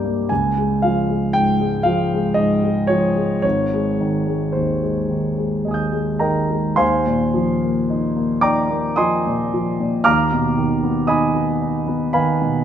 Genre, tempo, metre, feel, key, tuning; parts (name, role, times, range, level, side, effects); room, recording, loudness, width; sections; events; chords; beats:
classical, impressionist solo piano; 51-59 BPM; 3/4; rubato; Eb major; A4 = 439 Hz
warm grand piano; solo; 0.0-12.6 s; Ab1 to G6; -17 LUFS; equal
moderate recital hall reverb, RT60 1.8 s; -17 LUFS; side -9 dB against mid
0.0-6.8 A section; 6.8-12.6 B section
0.3 Db; 3.4 Abmaj7; 6.8 Eb69; 10.1 Abm6/Eb
| 0.30 1.33 2.36 | 3.44 4.55 5.66 | 6.81 7.90 8.97 | 10.05 11.09 12.16